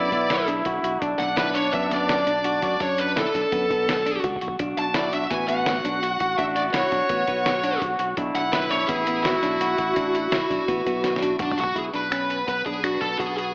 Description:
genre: progressive instrumental, band music in an uneven meter.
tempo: 168 BPM.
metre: 5/4.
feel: straight.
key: B dorian.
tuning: A4 = 439 Hz.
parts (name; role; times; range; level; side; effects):
bluesy overdriven lead guitar; melody; 0.0-13.5 s; D4 to A5; -27 LUFS; equal; distortion, slapback echo.
brilliant trombone; second line; 0.0-13.5 s; B3 to F#4; -30 LUFS; equal; none.
clean electric guitar; arpeggios; 0.0-13.5 s; B3 to F#4; -31 LUFS; equal; slapback echo.
fingered electric bass; bass; 0.0-13.5 s; A1 to F#2; -37 LUFS; equal; none.
lo-fi sampler-style drum kit; drums; 0.1-13.5 s; finger snaps, hi-hat, kick drum, snare drum, toms; -32 LUFS; equal; none.
room: wet lush hall reverb, RT60 1.8 s.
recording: big arena sound, AM radio sound.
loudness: -24 LUFS.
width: mono.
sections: 0.0-11.8 A section; 11.8-13.5 B section.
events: drum fill 4.2-4.6, 11.0-11.8.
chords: 0.0 Bm7; 4.6 Dadd9; 11.8 Bmadd9.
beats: 0.30 0.66 | 1.02 1.38 1.73 2.09 2.45 | 2.81 3.17 3.52 3.88 4.24 | 4.60 4.96 5.32 5.67 6.03 | 6.39 6.75 7.11 7.46 7.82 | 8.18 8.54 8.89 9.25 9.61 | 9.97 10.33 10.69 11.04 11.40 | 11.76 12.12 12.48 12.84 13.20.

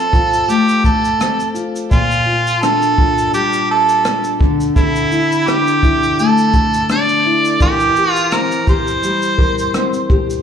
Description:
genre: acoustic pop.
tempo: 84 BPM.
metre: 4/4.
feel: swing 55% on 16ths.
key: unclear.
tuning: A4 = 440 Hz.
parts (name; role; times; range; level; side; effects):
warm harmonica; melody; 0.0-10.1 s; E4 to D5; -15 LUFS; right 3 dB; plate reverb, slapback echo, ping-pong delay.
nylon-string guitar; accompaniment; 0.0-10.4 s; Bb2 to Bb4; -17 LUFS; left 3 dB; plate reverb, slapback echo.
jazz brush drum kit; drums; 0.1-10.4 s; kick drum, rim click, shaker; -18 LUFS; equal; none.
room: wet club reverb, RT60 0.5 s.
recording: live gig heard through the venue's PA, club reverb, faint mains hum.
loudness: -12 LUFS.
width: side -8 dB against mid.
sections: 0.0-10.4 A section.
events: none.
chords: 0.0 F; 1.9 Bb6; 4.4 Dsus2; 7.6 C7/E.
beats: 0.49 1.20 | 1.91 2.62 3.34 4.05 | 4.76 5.47 6.18 6.89 | 7.61 8.32 9.03 9.74.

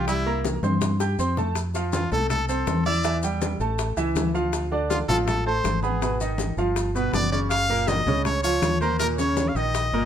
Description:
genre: latin, salsa.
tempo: 161 BPM.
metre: 4/4.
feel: straight.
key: unclear.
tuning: A4 = 442 Hz.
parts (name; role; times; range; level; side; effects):
brilliant trumpet; melody; 0.0-10.1 s; E4 to F5; -26 LUFS; equal; none.
clear baby grand piano; accompaniment; 0.0-10.1 s; Bb2 to G6; -26 LUFS; right 2 dB; none.
deep dub fingered electric bass; bass; 0.0-10.1 s; Gb1 to G2; -27 LUFS; equal; none.
bongos; percussion; 0.1-10.1 s; none; -33 LUFS; left 7 dB; none.
congas; percussion; 0.1-10.1 s; none; -30 LUFS; left 2 dB; none.
maracas; percussion; 0.1-9.9 s; none; -38 LUFS; left 6 dB; none.
room: light reverb.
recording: minimal, uncompressed stereo recording.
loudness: -21 LUFS.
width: side -9 dB against mid.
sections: 0.0-1.6 A section; 1.6-10.1 B section.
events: drum fill 0.6-1.6.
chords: 0.1 C7; 1.6 F; 3.0 Em; 3.8 A; 4.5 Dm7; 6.0 Abm; 6.8 G7; 7.5 Gbmaj7; 9.0 Eb7.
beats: | 0.08 0.45 0.82 1.19 | 1.56 1.93 2.30 2.67 | 3.04 3.42 3.79 4.16 | 4.53 4.90 5.27 5.64 | 6.02 6.39 6.76 7.13 | 7.51 7.88 8.25 8.62 | 9.00 9.37 9.74.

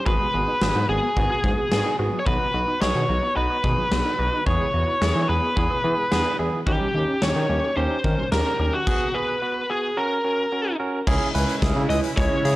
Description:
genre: synth-pop.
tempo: 109 BPM.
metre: 4/4.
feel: straight.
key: unclear.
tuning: A4 = 440 Hz.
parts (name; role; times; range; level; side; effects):
biting lead guitar; melody; 0.0-12.6 s; F#4 to D#5; -24 LUFS; equal; overdrive, analog delay.
resonant blip pluck; arpeggios; 0.0-8.8 s; D#3 to E5; -33 LUFS; left 1 dB; chorus, phaser, analog delay.
barky tine electric piano; accompaniment; 0.1-12.6 s; B3 to B4; -28 LUFS; right 2 dB; none.
smooth synth bass; bass; 0.1-12.6 s; G#1 to E3; -25 LUFS; equal; tube saturation.
huge arena drum kit; drums; 0.1-12.6 s; crash cymbal, hi-hat, kick drum, snare drum; -26 LUFS; equal; none.
brassy analog pad; sustained chords; 11.1-12.6 s; C#3 to E4; -28 LUFS; right 2 dB; lush chorus.
room: light reverb, small room reverb.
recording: dry, gritty hardware recording, transformer saturation, cassette tape.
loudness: -20 LUFS.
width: side -17 dB against mid.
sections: 0.0-11.1 A section; 11.1-12.6 B section.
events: none.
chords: 0.1 G#m7; 2.3 B; 4.5 E; 6.7 D#7; 8.9 G#m7; 10.0 F#; 11.1 C#m.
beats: | 0.06 0.61 1.16 1.72 | 2.27 2.81 3.37 3.92 | 4.47 5.02 5.57 6.12 | 6.67 7.22 7.77 8.32 | 8.87 9.42 9.97 10.52 | 11.07 11.62 12.17.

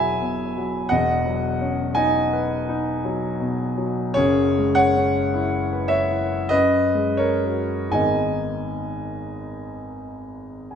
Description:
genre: classical, impressionist solo piano.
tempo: 39-58 BPM.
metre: 3/4.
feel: rubato.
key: unclear.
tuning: A4 = 441 Hz.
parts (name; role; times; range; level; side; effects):
warm concert grand piano; solo; 0.0-10.8 s; E1 to B5; -20 LUFS; equal; none.
room: moderate recital hall reverb, RT60 1.4 s.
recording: none.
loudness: -19 LUFS.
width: side -8 dB against mid.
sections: 0.0-10.8 A section.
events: none.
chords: 0.0 E69; 0.9 B69/E; 4.2 F#9sus4; 6.5 F#add9; 8.0 G#madd9.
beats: | 0.92 1.97 3.06 | 4.18 5.35 6.52 | 7.96 9.37 10.71.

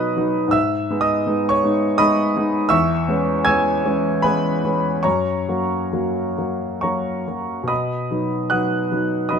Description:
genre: classical, romantic character piece for solo piano.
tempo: 65-85 BPM.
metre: 3/4.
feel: rubato.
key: B major.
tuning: A4 = 441 Hz.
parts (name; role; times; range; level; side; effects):
warm grand piano; solo; 0.0-9.4 s; E2 to G#6; -18 LUFS; equal; none.
room: light reverb.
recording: close, detailed microphones.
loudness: -18 LUFS.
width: side -6 dB against mid.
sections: 0.0-9.4 A section.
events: none.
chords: 0.0 B; 0.5 G#m; 2.7 C#m7/E; 5.0 F#; 7.7 B.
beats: | 0.53 1.27 2.00 | 2.72 3.47 4.24 | 5.04 5.92 6.83 | 7.70 8.51 9.30.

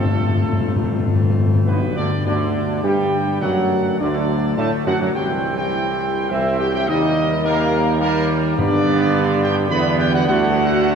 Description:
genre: classical, ceremonial fanfare.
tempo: 104 BPM.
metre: 3/4.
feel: straight.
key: G major.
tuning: A4 = 445 Hz.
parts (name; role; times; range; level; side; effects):
mellow trumpet section; melody; 0.0-10.9 s; A4 to B5; -24 LUFS; right 1 dB; none.
bright trombone section; sustained chords; 0.0-10.9 s; B2 to C4; -25 LUFS; right 3 dB; none.
chamber organ, principal chorus; sustained chords; 0.0-10.9 s; D3 to C5; -25 LUFS; left 2 dB; none.
dark French horn section; sustained chords; 0.0-10.9 s; A3 to B4; -24 LUFS; left 4 dB; none.
warm tuba; bass; 0.0-10.9 s; G1 to A2; -21 LUFS; right 3 dB; none.
timpani; percussion; 0.0-4.2, 8.6-9.4 s; G2 to D3; -21 LUFS; left 2 dB; none.
room: wet church reverb, RT60 3.6 s.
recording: dark, warm production.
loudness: -16 LUFS.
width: side -6 dB against mid.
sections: 0.0-1.7 A section; 1.7-10.9 B section.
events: timpani fill 0.0-1.7.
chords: 0.0 F/G; 1.7 G/B; 3.4 D; 5.2 C; 6.9 Eb; 8.6 G; 10.3 D.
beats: 0.45 1.06 | 1.67 2.26 2.84 | 3.42 4.00 4.58 | 5.15 5.73 6.31 | 6.88 7.45 8.02 | 8.58 9.15 9.72 | 10.28 10.85.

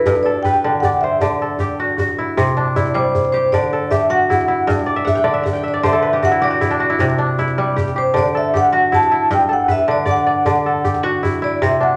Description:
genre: west african traditional, West African string and xylophone music.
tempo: 104 BPM (dotted quarters).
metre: 12/8.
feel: straight.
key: unclear.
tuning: A4 = 440 Hz.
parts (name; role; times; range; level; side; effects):
vibraphone with medium mallets; melody; 0.0-12.0 s; B4 to A5; -19 LUFS; equal; none.
kora; arpeggios; 0.0-12.0 s; G2 to G5; -20 LUFS; equal; none.
djembe; percussion; 0.1-11.8 s; none; -26 LUFS; equal; none.
room: wet large studio reverb, RT60 1.1 s.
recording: none.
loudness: -17 LUFS.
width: mono.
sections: 0.0-2.4 A section; 2.4-12.0 B section.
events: vibraphone solo 2.4-12.0; kora fill 4.9-7.0.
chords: 0.1 G; 1.2 D; 2.4 C; 3.5 D; 4.7 G5; 5.8 D; 7.0 C; 8.2 D; 9.3 G; 10.5 D.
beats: | 0.07 0.65 1.22 1.80 | 2.38 2.96 3.53 4.11 | 4.69 5.27 5.84 6.42 | 7.00 7.57 8.15 8.73 | 9.30 9.88 10.46 11.04 | 11.61.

